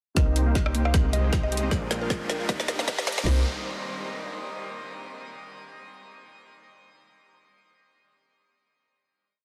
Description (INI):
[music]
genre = future bass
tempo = 155 BPM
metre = 4/4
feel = swing 56% on 16ths, half-time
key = C minor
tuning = A4 = 440 Hz
[part]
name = dark grand piano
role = accompaniment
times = 0.1-3.4 s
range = Bb2 to D5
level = -42 LUFS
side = equal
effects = sidechain pumping, dub echo
[part]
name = mallet-like synth pluck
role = melody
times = 0.2-3.4 s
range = Bb4 to F5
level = -40 LUFS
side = equal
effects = none
[part]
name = unison pluck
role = arpeggios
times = 0.2-3.4 s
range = Bb3 to Ab4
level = -42 LUFS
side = equal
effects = none
[part]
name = supersaw chords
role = riff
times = 0.2-3.4 s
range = G3 to G5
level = -38 LUFS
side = equal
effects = sidechain pumping, low-pass filter
[part]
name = warm 808-style bass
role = bass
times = 0.2-3.4 s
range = Bb1 to Eb2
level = -29 LUFS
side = equal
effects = sidechain pumping
[part]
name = trap drum kit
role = drums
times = 0.2-3.4 s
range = hi-hat, kick drum, snare drum, toms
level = -27 LUFS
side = equal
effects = none
[part]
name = trap drum kit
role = drums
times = 0.2-3.2 s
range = hi-hat, rim click, snare drum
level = -34 LUFS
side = equal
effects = none
[part]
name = riser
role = sound effects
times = 1.8-3.3 s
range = none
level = -42 LUFS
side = equal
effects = none
[sound]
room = moderate shimmer reverb, RT60 5.3 s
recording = dense, heavily limited modern master, high-pass filter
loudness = -26 LUFS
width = mono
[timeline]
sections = 0.2-3.3 build; 3.3-4.8 final chord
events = build-up 0.2-3.3; drum fill 0.2-3.3; filter sweep on supersaw synth 0.2-3.3; filter sweep 0.2-3.3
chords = 0.2 Cm7; 0.9 Abmaj7/C; 1.7 Bb7; 2.5 Ebmaj7; 3.3 Cm7